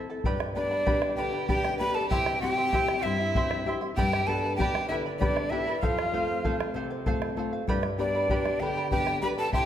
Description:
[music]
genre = andean folk, Andean ensemble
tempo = 65 BPM (dotted quarters)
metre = 6/8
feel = straight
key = unclear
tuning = A4 = 436 Hz
[part]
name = charango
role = accompaniment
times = 0.0-9.7 s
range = E4 to C6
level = -33 LUFS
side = right 2 dB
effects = none
[part]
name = nylon-string guitar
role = accompaniment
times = 0.0-9.7 s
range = F2 to A4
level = -32 LUFS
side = left 4 dB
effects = none
[part]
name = bombo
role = percussion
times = 0.2-9.7 s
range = none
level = -32 LUFS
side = equal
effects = none
[part]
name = breathy hollow quena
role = melody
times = 0.6-9.7 s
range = D5 to B5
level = -29 LUFS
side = equal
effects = none
[part]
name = rich violin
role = second line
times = 0.6-9.7 s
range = D4 to B4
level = -34 LUFS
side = right 2 dB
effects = none
[sound]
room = wet recital hall reverb, RT60 1.9 s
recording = none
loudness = -25 LUFS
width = side -10 dB against mid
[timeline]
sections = 0.2-9.7 A section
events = none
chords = 0.2 G; 2.1 C; 4.0 G; 5.8 F; 7.7 G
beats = | 0.25 1.18 | 2.11 3.04 | 3.97 4.90 | 5.82 6.75 | 7.67 8.60 | 9.53

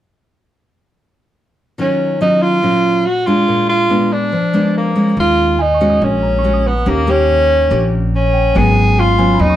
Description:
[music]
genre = bossa nova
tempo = 142 BPM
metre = 4/4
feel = straight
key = Eb minor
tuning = A4 = 436 Hz
[part]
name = warm tenor saxophone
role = melody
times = 1.8-9.6 s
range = Bb3 to Ab4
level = -14 LUFS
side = right 1 dB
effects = none
[part]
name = nylon-string guitar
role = accompaniment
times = 1.8-9.6 s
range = Ab2 to G4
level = -16 LUFS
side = left 1 dB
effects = none
[part]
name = upright bass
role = bass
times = 5.2-9.6 s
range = Ab1 to Eb2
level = -17 LUFS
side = equal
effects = none
[part]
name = tine electric piano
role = accompaniment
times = 5.6-9.6 s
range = G5 to Eb6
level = -26 LUFS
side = right 7 dB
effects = none
[sound]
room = moderate studio reverb, RT60 0.5 s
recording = band playing live in one room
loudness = -11 LUFS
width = side -12 dB against mid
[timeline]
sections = 1.8-5.2 A section; 5.2-9.6 B section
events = none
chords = 1.8 Ebm9; 3.5 Bb7b9; 5.2 Ebm11; 6.9 Eb7; 8.6 Abm7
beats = | 1.79 2.21 2.63 3.06 | 3.48 3.90 4.33 4.75 | 5.17 5.59 6.02 6.44 | 6.86 7.28 7.71 8.13 | 8.55 8.97 9.40

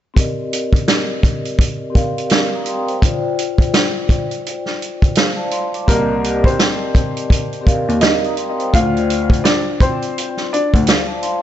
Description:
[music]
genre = hip hop, boom-bap hip-hop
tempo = 84 BPM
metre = 4/4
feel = swing 60% on 16ths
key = C dorian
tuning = A4 = 440 Hz
[part]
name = vibraphone with soft mallets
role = accompaniment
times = 0.1-11.4 s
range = C4 to Eb6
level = -22 LUFS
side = left 2 dB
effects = cassette tape, high-pass filter, low-pass filter
[part]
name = vintage drum kit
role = drums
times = 0.2-11.4 s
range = hi-hat, kick drum, snare drum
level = -16 LUFS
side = equal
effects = none
[part]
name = warm upright piano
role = melody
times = 5.9-11.1 s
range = Bb3 to F5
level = -21 LUFS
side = equal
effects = high-pass filter, low-pass filter, ping-pong delay
[part]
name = dark baby grand piano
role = bass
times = 5.9-10.9 s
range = C2 to Eb2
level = -20 LUFS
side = left 1 dB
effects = none
[sound]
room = light reverb, small room reverb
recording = nothing above 7.8 kHz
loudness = -14 LUFS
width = side -11 dB against mid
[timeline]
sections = 0.2-5.9 A section; 5.9-11.4 B section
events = filter sweep on vibraphone 0.2-5.9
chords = 0.2 Cm7; 3.0 Dm7; 5.9 Cm7; 8.7 Dm7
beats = | 0.16 0.88 1.59 2.31 | 3.02 3.74 4.45 5.16 | 5.88 6.59 7.31 8.02 | 8.74 9.45 10.16 10.88

